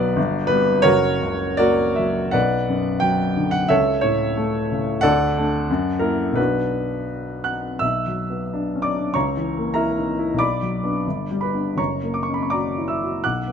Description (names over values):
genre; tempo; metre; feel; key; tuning
classical, romantic character piece for solo piano; 78-98 BPM; 2/4; rubato; B minor; A4 = 440 Hz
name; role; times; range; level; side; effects
warm baby grand piano; solo; 0.0-13.5 s; F#1 to F#6; -19 LUFS; equal; none
room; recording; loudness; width
light reverb; close, detailed microphones; -19 LUFS; side -7 dB against mid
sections
0.0-7.8 A section; 7.8-13.5 B section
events
none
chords
0.2 G; 0.9 F#; 2.3 Bm; 3.7 A/C#; 5.0 D; 5.7 F#7; 6.4 Bm; 9.1 A#dim/C#; 10.4 Bm; 11.0 G; 11.8 F#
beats
0.17 | 0.86 1.61 | 2.34 3.02 | 3.70 4.36 | 5.03 5.68 | 6.37 7.09 | 7.82 8.51 | 9.15 9.77 | 10.39 11.05 | 11.78 12.52 | 13.24